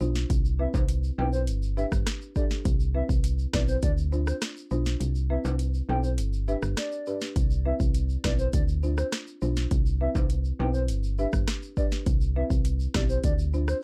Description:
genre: dancehall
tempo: 102 BPM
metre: 4/4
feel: straight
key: C major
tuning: A4 = 440 Hz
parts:
  - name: folk marimba with medium mallets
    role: accompaniment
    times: 0.0-13.7 s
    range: C4 to C5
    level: -37 LUFS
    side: equal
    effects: none
  - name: solid FM bass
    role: bass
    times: 0.0-13.7 s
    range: G1 to D2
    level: -29 LUFS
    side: equal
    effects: none
  - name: tube shaker and timbales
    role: percussion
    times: 0.0-13.8 s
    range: none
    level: -45 LUFS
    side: equal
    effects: none
  - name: afro-pop drum kit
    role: drums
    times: 0.2-13.8 s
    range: hi-hat, kick drum, rim click, snare drum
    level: -29 LUFS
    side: equal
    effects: none
  - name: hollow clarinet-like synth lead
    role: melody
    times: 0.6-13.8 s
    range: C5 to G5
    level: -35 LUFS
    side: equal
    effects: chorus, delay
room: little or no reverb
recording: dark, warm production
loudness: -27 LUFS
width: mono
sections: 0.0-13.8 A section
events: kick muted 5.0-7.4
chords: 0.3 Cmaj7; 1.5 G5; 2.7 Cmaj7; 3.8 Dm7; 5.0 Cmaj7; 6.2 G; 7.4 Cmaj7; 8.5 Dm7; 9.7 Cmaj7; 10.9 G; 12.1 Cmaj7; 13.2 Dm7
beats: | 0.30 0.89 1.48 2.06 | 2.65 3.24 3.83 4.42 | 5.01 5.59 6.18 6.77 | 7.36 7.95 8.54 9.12 | 9.71 10.30 10.89 11.48 | 12.06 12.65 13.24

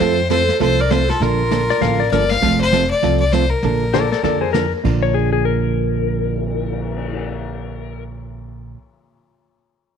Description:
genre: country, western swing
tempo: 198 BPM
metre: 4/4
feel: swing 62% on 8ths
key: Bb major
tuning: A4 = 439 Hz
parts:
  - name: clear fiddle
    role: melody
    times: 0.0-4.5 s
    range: A4 to F5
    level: -19 LUFS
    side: left 4 dB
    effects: none
  - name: warm clarinet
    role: second line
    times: 0.0-2.1 s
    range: F4 to Bb4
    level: -23 LUFS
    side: right 8 dB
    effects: none
  - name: hollow-body jazz guitar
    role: accompaniment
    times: 0.0-8.8 s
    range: Bb2 to A4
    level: -21 LUFS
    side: right 8 dB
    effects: none
  - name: upright bass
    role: bass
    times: 0.0-8.7 s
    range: F1 to F2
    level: -22 LUFS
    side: left 1 dB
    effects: none
  - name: vintage brush drum kit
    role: drums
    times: 0.0-7.2 s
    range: brushed snare drum, crash cymbal, cymbal swell, hi-hat, kick drum, snare drum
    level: -28 LUFS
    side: left 7 dB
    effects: none
  - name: clean lap steel guitar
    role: second line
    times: 1.7-8.0 s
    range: Ab4 to F5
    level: -22 LUFS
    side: left 11 dB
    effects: none
room: light reverb, small room ambience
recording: 1960s-style stereo with parts hard left and right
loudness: -15 LUFS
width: side -7 dB against mid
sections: 0.0-2.4 A section; 2.4-4.8 B section; 4.8-7.3 C section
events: drum fill 2.1-2.4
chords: 0.0 F; 1.2 Bbmaj7; 2.4 F; 3.6 Bbmaj7; 4.8 Bb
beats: | 0.00 0.30 0.60 0.91 | 1.21 1.51 1.81 2.12 | 2.42 2.72 3.02 3.33 | 3.63 3.93 4.24 4.54 | 4.84 5.15 5.45 5.75 | 6.05 6.36 6.66 6.96

